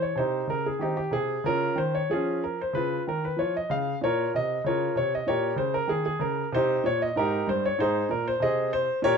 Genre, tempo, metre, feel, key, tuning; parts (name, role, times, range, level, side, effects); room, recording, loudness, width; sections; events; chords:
classical, baroque-style suite movement for grand piano; 95 BPM; 4/4; rubato; A4 = 440 Hz
warm baby grand piano; solo; 0.0-9.2 s; G2 to F5; -24 LUFS; equal
light reverb; dark, warm production; -24 LUFS; side -6 dB against mid
0.0-9.2 A section
0.2 Cm; 1.4 Db69; 4.0 Bbm; 5.3 Gdim/Bb; 6.5 Cm; 7.8 Ab